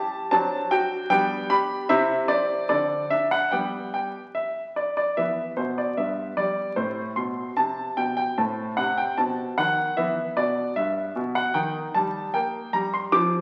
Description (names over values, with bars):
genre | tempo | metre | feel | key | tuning
classical-period piano sonatina | 75 BPM | 2/4 | straight | G major, E minor from 5.2 s | A4 = 441 Hz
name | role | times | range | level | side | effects
clear baby grand piano | solo | 0.0-13.4 s | G2 to D6 | -25 LUFS | equal | none
room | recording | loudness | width
wet recital hall reverb, RT60 1.4 s | very old 78 rpm record, vinyl crackle | -25 LUFS | mono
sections
0.0-5.2 A section; 5.2-13.4 B section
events
none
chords
0.3 D7/F#; 1.1 G; 1.9 C; 2.7 D5; 3.5 G; 5.2 E5; 6.0 Em/G; 6.8 Am; 8.4 Am7; 9.2 B7b9; 10.0 Em; 11.5 Eb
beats
| 0.32 1.10 | 1.90 2.70 | 3.52 4.35 | 5.18 5.98 | 6.78 7.58 | 8.38 9.17 | 9.96 10.75 | 11.54 12.34 | 13.12